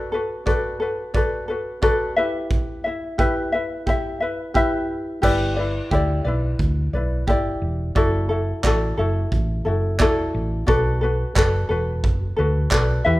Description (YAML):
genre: acoustic pop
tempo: 88 BPM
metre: 4/4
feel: swing 55% on 16ths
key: unclear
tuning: A4 = 440 Hz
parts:
  - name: ukulele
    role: accompaniment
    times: 0.0-13.2 s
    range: E4 to E5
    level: -22 LUFS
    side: left 1 dB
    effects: none
  - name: modern studio drum kit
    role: drums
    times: 0.5-12.9 s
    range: crash cymbal, handclaps, kick drum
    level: -24 LUFS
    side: right 1 dB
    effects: none
  - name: hollow-body short-scale fingered electric bass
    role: bass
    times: 5.2-13.2 s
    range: E1 to E2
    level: -22 LUFS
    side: equal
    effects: none
room: light reverb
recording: none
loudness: -19 LUFS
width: side -18 dB against mid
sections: 0.0-5.2 A section; 5.2-13.2 B section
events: none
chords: 0.0 Bm7; 2.2 Em; 5.2 G6; 8.0 Dadd9/F#; 10.7 Bm7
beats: 0.47 1.15 1.83 | 2.51 3.19 3.87 4.55 | 5.24 5.92 6.60 7.28 | 7.96 8.64 9.32 10.00 | 10.68 11.36 12.04 12.72